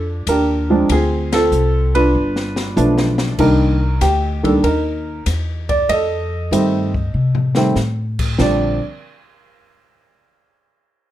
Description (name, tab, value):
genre	jazz piano trio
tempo	96 BPM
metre	4/4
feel	swing 69% on 8ths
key	Bb major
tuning	A4 = 438 Hz
part	dark baby grand piano	melody	0.0-8.8 s	D3 to Eb5	-16 LUFS	right 1 dB	none
part	upright bass	bass	0.0-8.8 s	G1 to C3	-19 LUFS	left 1 dB	none
part	open jazz drum kit	drums	0.3-8.6 s	crash cymbal, hi-hat, kick drum, ride cymbal, snare drum, toms	-25 LUFS	left 2 dB	none
room	little or no reverb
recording	dark, warm production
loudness	-14 LUFS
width	side -13 dB against mid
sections	0.0-3.4 A section; 3.4-8.4 B section; 8.4-10.9 C section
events	band accent 1.2-1.5; drum fill 2.1-3.4, 7.1-7.8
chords	0.0 Bb6; 0.9 Dm7; 2.1 G7; 3.4 Cm9; 5.9 F9; 8.4 Bb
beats	0.27 | 0.90 1.52 2.14 2.77 | 3.39 4.01 4.64 5.26 | 5.89 6.51 7.14 7.76 | 8.39